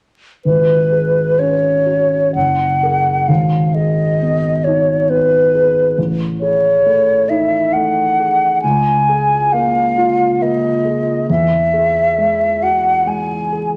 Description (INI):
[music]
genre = classical, impressionist duo for flute and grand piano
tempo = 67 BPM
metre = 3/4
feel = rubato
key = unclear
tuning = A4 = 445 Hz
[part]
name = mellow hollow silver concert flute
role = melody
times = 0.5-13.7 s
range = B4 to G#5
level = -16 LUFS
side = equal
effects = none
[part]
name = dark concert grand piano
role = accompaniment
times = 0.5-13.8 s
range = F#1 to A#4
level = -20 LUFS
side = equal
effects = none
[sound]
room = wet stone room reverb, RT60 1.2 s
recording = vinyl crackle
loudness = -15 LUFS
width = mono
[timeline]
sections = 0.5-13.8 A section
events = none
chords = 0.5 G#m7; 2.4 F#add9; 3.3 G#m; 6.0 Amaj7#11; 8.6 C#69; 11.3 Eadd9